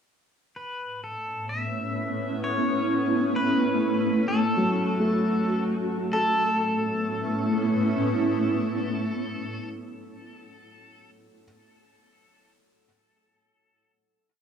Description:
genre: ambient.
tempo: 64 BPM.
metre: 3/4.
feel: straight.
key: A major.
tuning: A4 = 440 Hz.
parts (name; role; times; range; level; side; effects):
granular cloud pad; sustained chords; 1.4-9.7 s; A2 to F#4; -25 LUFS; right 1 dB; built-in reverb.
pedal steel guitar; melody; 0.6-9.7 s; A4 to E5; -29 LUFS; left 1 dB; cassette tape, analog delay.
felt-muted upright piano; arpeggios; 4.6-11.5 s; F#3 to A4; -29 LUFS; left 1 dB; analog delay.
room: wet studio reverb, RT60 0.6 s.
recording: home recording on cassette.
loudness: -23 LUFS.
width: side -7 dB against mid.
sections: 0.6-6.1 A section; 6.1-8.9 final chord.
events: fade-in on pedal steel guitar 0.6-6.1.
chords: 0.6 Aadd9; 3.3 F#m; 6.1 Aadd9.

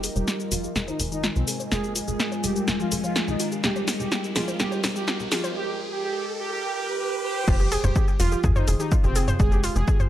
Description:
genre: melodic techno.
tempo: 125 BPM.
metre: 4/4.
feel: straight.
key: F minor.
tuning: A4 = 439 Hz.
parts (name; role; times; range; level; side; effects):
deep dark ambient pad; sustained chords; 0.0-10.1 s; Ab3 to Ab4; -34 LUFS; left 2 dB; chorus, built-in reverb, sidechain pumping.
warbly dusty pluck; arpeggios; 0.0-10.1 s; F4 to C5; -33 LUFS; right 1 dB; chorus, sidechain pumping, digital delay.
tight sequencer bass; bass; 0.0-9.8 s; F1 to F2; -26 LUFS; equal; tube saturation, sidechain pumping.
house drum kit; drums; 0.0-10.1 s; crash cymbal, hi-hat, shaker, snare drum, toms; -27 LUFS; left 1 dB; sidechain pumping on perc, sidechain pumping on hats, sidechain pumping on cymbals, sidechain pumping on toms.
riser; sound effects; 1.6-7.5 s; none; -35 LUFS; equal; none.
deep dark ambient pad; texture; 0.0-5.6 s; F4 to Bb5; -38 LUFS; right 1 dB; chorus, built-in reverb, sidechain pumping.
analog synth brass; melody; 0.2-10.0 s; C4 to Ab4; -31 LUFS; right 2 dB; chorus, digital delay.
glassy wavetable pluck; second line; 0.2-10.0 s; C3 to Ab3; -32 LUFS; equal; chorus, sidechain pumping, digital delay.
electronic kick drum; drums; 7.5-10.0 s; none; -21 LUFS; equal; none.
room: light reverb, digital ambience.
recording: high-pass filter.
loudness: -22 LUFS.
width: side -12 dB against mid.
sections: 0.0-7.5 A section; 7.5-10.1 B section.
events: build-up 0.0-7.5; drum fill 0.0-5.6; filter sweep on synth arpeggio sound 0.0-7.5; filter sweep on analog polysynth 0.0-7.5; filter sweep on synth pluck 0.0-7.5; filter sweep on ambient pad 0.0-7.5; riser 1.6-7.5; break 5.6-7.5; drop 7.5-10.1.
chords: 0.0 Fmadd9.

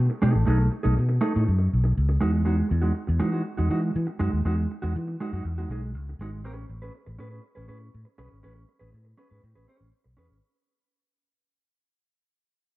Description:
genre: disco.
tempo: 121 BPM.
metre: 4/4.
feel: straight.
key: unclear.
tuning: A4 = 443 Hz.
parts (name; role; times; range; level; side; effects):
fingered electric bass; bass; 0.0-10.4 s; G#1 to E3; -24 LUFS; equal; none.
mellow electric guitar; accompaniment; 0.1-10.4 s; G#3 to C#5; -28 LUFS; right 2 dB; spring reverb.
room: light reverb.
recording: dark, warm production.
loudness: -22 LUFS.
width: side -18 dB against mid.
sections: 0.0-10.4 A section.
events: fade-out 0.0-10.4.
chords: 0.0 B13; 2.2 Emaj9; 6.4 Amaj9.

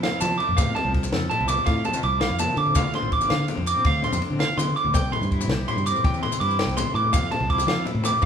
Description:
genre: highlife guitar band.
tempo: 110 BPM (dotted quarters).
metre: 12/8.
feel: straight.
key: F major.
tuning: A4 = 440 Hz.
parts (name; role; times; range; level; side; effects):
electric guitar at the edge of break-up; accompaniment; 0.0-8.3 s; F2 to A4; -33 LUFS; left 4 dB; tremolo.
electric guitar at the edge of break-up; arpeggios; 0.0-8.3 s; F5 to D6; -24 LUFS; right 2 dB; none.
fingered electric bass; bass; 0.0-8.3 s; A1 to F3; -27 LUFS; equal; none.
compact cocktail drum kit; drums; 0.0-8.3 s; kick drum, ride cymbal, snare drum; -27 LUFS; equal; none.
congas; percussion; 0.0-8.3 s; none; -30 LUFS; left 4 dB; none.
maracas; percussion; 0.2-8.1 s; none; -36 LUFS; left 4 dB; none.
room: moderate large studio reverb, RT60 1.0 s.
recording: band playing live in one room.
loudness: -20 LUFS.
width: side -8 dB against mid.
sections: 0.0-8.3 A section.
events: none.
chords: 0.0 Fmaj7; 2.8 Dm7; 4.9 C; 7.1 Fmaj7.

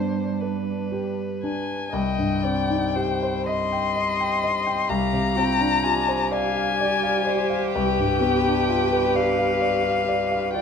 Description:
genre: classical, slow romantic movement for piano quartet.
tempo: 38-43 BPM (dotted quarters).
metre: 12/8.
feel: rubato.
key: C minor.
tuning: A4 = 440 Hz.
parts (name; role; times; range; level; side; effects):
muted violin; melody; 0.0-10.6 s; D4 to C6; -25 LUFS; left 7 dB; none.
muted cello; second line; 0.0-10.6 s; G3 to G4; -27 LUFS; right 10 dB; none.
muted violin; second line; 0.0-10.6 s; B4 to Ab5; -29 LUFS; left 2 dB; none.
clear concert grand piano; accompaniment; 0.0-10.6 s; C2 to G5; -24 LUFS; left 1 dB; none.
room: moderate large studio reverb, RT60 1.1 s.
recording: dark, warm production.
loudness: -20 LUFS.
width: side -6 dB against mid.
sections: 0.0-1.9 A section; 1.9-10.6 A section.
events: none.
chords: 0.0 G; 1.9 Cm; 4.9 Dm7b5/C; 7.7 G7/C.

